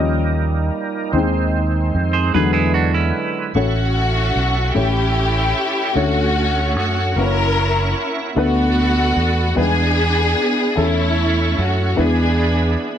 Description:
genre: gospel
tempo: 50 BPM (dotted quarters)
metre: 6/8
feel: straight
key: A major from 3.5 s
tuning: A4 = 442 Hz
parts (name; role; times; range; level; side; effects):
- warm baby grand piano; accompaniment; 0.0-13.0 s; A2 to Eb5; -23 LUFS; left 4 dB; none
- bright tonewheel organ; sustained chords; 0.0-13.0 s; D3 to C#6; -26 LUFS; right 6 dB; slow rotary speaker, overdrive, chorus vibrato
- warm French horn section; sustained chords; 0.0-3.5 s; D3 to Eb4; -30 LUFS; right 1 dB; none
- fingered electric bass; bass; 0.0-12.7 s; F#1 to F#2; -19 LUFS; right 1 dB; none
- clean electric guitar; second line; 2.1-3.5 s; Db4 to C5; -21 LUFS; right 8 dB; none
- dark studio string section; melody; 3.6-13.0 s; A3 to A#4; -19 LUFS; left 1 dB; none
room: light reverb, small room reverb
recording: none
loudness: -15 LUFS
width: side -9 dB against mid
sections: 0.0-3.5 A section; 3.5-13.0 B section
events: grand piano solo 0.0-3.5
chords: 0.0 Eb7; 1.1 Ab/Eb; 2.3 E7; 3.5 A6; 4.8 A7; 6.0 Dmaj7; 7.2 F#7; 8.4 Bm7/D; 9.6 E7; 10.8 A/E; 12.0 E7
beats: | 1.14 2.34 | 3.55 4.75 | 5.96 7.17 | 8.37 9.58 | 10.78 11.99

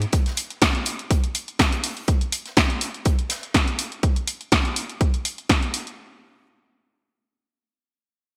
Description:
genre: piano house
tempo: 123 BPM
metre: 4/4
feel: swing 54% on 16ths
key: none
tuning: none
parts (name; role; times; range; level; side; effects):
- punchy analog drum machine; drums; 0.0-6.0 s; hi-hat, snare drum; -25 LUFS; equal; gated reverb
- electronic kick drum; drums; 0.1-5.6 s; none; -23 LUFS; equal; overdrive
- soft-mallet drum kit; drums; 0.1-3.9 s; hi-hat, snare drum; -39 LUFS; equal; none
room: light reverb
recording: bright 1980s-style digital production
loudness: -23 LUFS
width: mono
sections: 0.0-6.0 A section; 6.0-8.4 B section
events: none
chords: none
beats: | 0.13 0.62 1.10 1.59 | 2.08 2.57 3.06 3.54 | 4.03 4.52 5.01 5.50

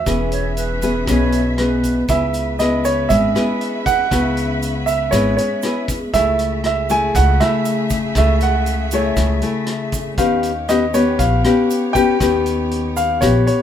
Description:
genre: bossa nova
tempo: 118 BPM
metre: 4/4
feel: straight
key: unclear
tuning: A4 = 440 Hz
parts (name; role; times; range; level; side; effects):
- warm baby grand piano; melody; 0.0-13.6 s; C#5 to G#5; -19 LUFS; right 2 dB; none
- nylon-string guitar; accompaniment; 0.0-13.6 s; B2 to G#4; -19 LUFS; left 3 dB; none
- muted studio string section; sustained chords; 0.0-13.6 s; A3 to E5; -28 LUFS; left 1 dB; none
- upright bass; bass; 0.0-13.5 s; E1 to D#2; -21 LUFS; equal; none
- vintage drum kit; drums; 0.1-13.6 s; hi-hat, kick drum, rim click; -26 LUFS; equal; none
- egg shaker; percussion; 0.1-13.6 s; none; -34 LUFS; right 9 dB; none
- bright wooden-headed alto flute; second line; 0.3-2.1 s; B4 to C#5; -27 LUFS; right 5 dB; none
room: light reverb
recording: minimal, uncompressed stereo recording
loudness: -15 LUFS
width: side -9 dB against mid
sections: 0.0-2.1 A section; 2.1-13.6 B section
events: none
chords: 0.1 E6; 2.1 C#m7; 6.1 F#m9/C# (rootless); 10.2 D#7b13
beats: | 0.06 0.57 1.07 1.58 | 2.09 2.59 3.10 3.61 | 4.11 4.62 5.12 5.63 | 6.14 6.64 7.15 7.65 | 8.16 8.67 9.17 9.68 | 10.18 10.69 11.20 11.70 | 12.21 12.72 13.22

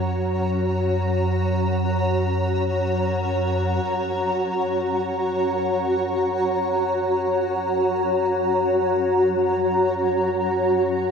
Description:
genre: dark ambient drone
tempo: free time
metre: none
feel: none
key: F# major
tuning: A4 = 440 Hz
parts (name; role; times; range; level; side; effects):
- granular cloud pad; sustained chords; 0.0-11.1 s; F#4 to A#5; -21 LUFS; equal; built-in reverb
- deep rumbling drone; drone; 0.0-11.1 s; F#2 to F#3; -27 LUFS; equal; built-in reverb, analog chorus
- bubbling stepped-filter texture; texture; 0.0-3.9 s; C#5; -50 LUFS; equal; none
room: wet huge ambient reverb, RT60 7.9 s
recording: dreamy mix soaked in reverb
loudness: -20 LUFS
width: side -6 dB against mid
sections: 0.0-3.9 A section; 3.9-11.1 B section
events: none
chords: 0.0 F#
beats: free time

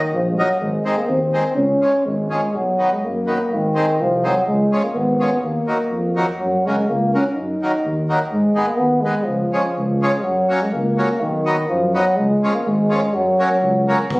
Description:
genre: alpine folk, alpine dance band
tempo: 125 BPM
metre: 2/4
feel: straight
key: F# major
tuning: A4 = 440 Hz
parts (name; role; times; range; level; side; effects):
- warm euphonium; melody; 0.0-14.2 s; D#3 to D#4; -18 LUFS; equal; none
- warm tuba; bass; 0.1-14.2 s; G#1 to G#2; -23 LUFS; equal; none
- accordion; accompaniment; 0.4-14.0 s; C#3 to D#4; -22 LUFS; equal; none
- kick drum; drums; 14.1-14.2 s; none; -25 LUFS; equal; none
room: moderate recital hall reverb, RT60 1.6 s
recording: recorded on a phone in the room, studio reverb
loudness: -16 LUFS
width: side -24 dB against mid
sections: 0.0-14.1 A section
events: none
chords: 0.0 D#m; 0.6 G#; 1.6 C#; 2.5 B; 3.5 G#; 4.5 C#7; 5.4 D#m; 6.4 F#; 7.4 D#m/F#; 8.3 G#m; 9.3 C#; 10.2 F#; 11.2 B; 12.2 C#; 13.1 F#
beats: 0.13 | 0.61 1.09 | 1.57 2.06 | 2.54 3.03 | 3.52 4.00 | 4.48 4.95 | 5.43 5.91 | 6.39 6.88 | 7.36 7.84 | 8.32 8.79 | 9.27 9.75 | 10.24 10.73 | 11.22 11.70 | 12.18 12.66 | 13.14 13.62 | 14.11

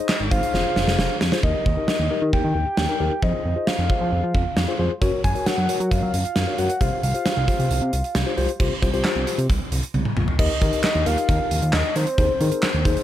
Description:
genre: synth-pop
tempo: 134 BPM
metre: 4/4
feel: straight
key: unclear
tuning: A4 = 441 Hz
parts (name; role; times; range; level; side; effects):
- soft octave-layered synth lead; melody; 0.0-12.9 s; C5 to Ab5; -26 LUFS; equal; chorus, analog delay
- mellow tine electric piano; accompaniment; 0.0-13.0 s; Eb4 to Db5; -27 LUFS; left 4 dB; medium stereo tremolo
- gated 80s drum kit; drums; 0.1-13.0 s; crash cymbal, handclaps, hi-hat, kick drum, snare drum, toms; -23 LUFS; right 1 dB; none
- fat analog bass; bass; 0.2-13.0 s; F1 to Gb3; -23 LUFS; equal; none
room: studio reverb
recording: none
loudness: -19 LUFS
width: side -12 dB against mid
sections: 0.0-1.4 A section; 1.4-8.6 B section; 8.6-10.4 C section; 10.4-13.0 A section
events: drum fill 0.5-1.4, 9.9-10.4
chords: 0.0 Ab; 0.5 Fm; 1.4 Eb; 3.2 Fm7; 5.0 Gb; 6.8 Csus4; 10.4 Eb; 12.2 Ab/Eb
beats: 0.09 0.54 0.99 | 1.44 1.88 2.33 2.78 | 3.23 3.67 4.12 4.57 | 5.02 5.46 5.91 6.36 | 6.81 7.26 7.70 8.15 | 8.60 9.05 9.49 9.94 | 10.39 10.84 11.29 11.73 | 12.18 12.63

